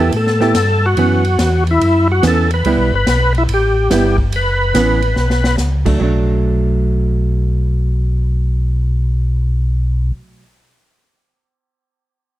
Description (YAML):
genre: soul jazz organ trio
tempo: 143 BPM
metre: 4/4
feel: swing 66% on 8ths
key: B minor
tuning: A4 = 440 Hz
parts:
  - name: percussive tonewheel organ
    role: melody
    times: 0.0-5.6 s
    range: E4 to B4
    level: -16 LUFS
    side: left 1 dB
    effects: slow rotary speaker, overdrive, chorus vibrato
  - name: hollow-body jazz guitar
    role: accompaniment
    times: 0.0-10.5 s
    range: E3 to G4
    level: -19 LUFS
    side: right 4 dB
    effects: none
  - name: mellow tonewheel organ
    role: bass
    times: 0.0-10.1 s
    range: F#1 to A2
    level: -15 LUFS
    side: equal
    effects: chorus vibrato, slow rotary speaker
  - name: swinging big-band drum kit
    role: drums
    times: 0.1-5.9 s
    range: crash cymbal, hi-hat, kick drum, ride cymbal, snare drum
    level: -22 LUFS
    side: left 1 dB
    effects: none
room: light reverb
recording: dark, warm production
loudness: -13 LUFS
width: side -14 dB against mid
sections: 0.0-6.0 A section; 6.0-9.4 B section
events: drum fill 5.2-5.6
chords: 0.0 C#m7b5 (rootless); 1.0 F#7sus4; 2.6 C#m7b5; 4.3 F#7sus4; 6.0 Bm7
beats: 0.13 0.55 | 0.97 1.39 1.80 2.23 | 2.64 3.06 3.48 3.90 | 4.32 4.74 5.16 5.58 | 6.00 6.42 6.84 7.26 | 7.68 8.10 8.52 8.94